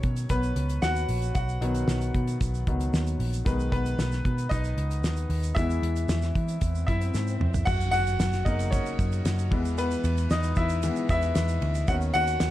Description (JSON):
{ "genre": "piano-driven pop", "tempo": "114 BPM", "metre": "4/4", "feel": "straight", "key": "unclear", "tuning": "A4 = 440 Hz", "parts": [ { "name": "bright upright piano", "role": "accompaniment", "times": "0.0-12.5 s", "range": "C#3 to F#5", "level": "-29 LUFS", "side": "left 2 dB", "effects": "none" }, { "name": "vintage muted picked electric bass", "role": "bass", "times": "0.0-12.5 s", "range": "A#1 to E3", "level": "-27 LUFS", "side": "equal", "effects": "none" }, { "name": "damped 70s drum kit", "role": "drums", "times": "0.0-12.5 s", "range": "crash cymbal, hi-hat, kick drum, ride cymbal, snare drum, toms", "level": "-29 LUFS", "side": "equal", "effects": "none" }, { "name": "tube shaker", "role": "percussion", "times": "0.2-12.5 s", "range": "none", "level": "-45 LUFS", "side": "right 11 dB", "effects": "none" }, { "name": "swell and impact", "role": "sound effects", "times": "6.3-9.8 s", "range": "none", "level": "-38 LUFS", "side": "equal", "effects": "none" } ], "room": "small room reverb", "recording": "dark, warm production", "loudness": "-24 LUFS", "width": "side -14 dB against mid", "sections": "0.0-7.7 A section; 7.7-12.5 B section", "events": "upright piano solo 0.0-7.7, 7.7-12.5; swell 6.3-7.7; drum fill 7.1-7.7; impact 7.7-9.8", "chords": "0.0 B; 3.5 G#m/B; 5.6 E; 7.7 F#; 9.5 E; 11.9 Badd9/D#", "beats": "0.30 0.83 | 1.35 1.88 2.41 2.93 | 3.46 3.99 4.51 5.04 | 5.57 6.09 6.62 7.14 | 7.67 8.20 8.72 9.25 | 9.78 10.30 10.83 11.36 | 11.88 12.41" }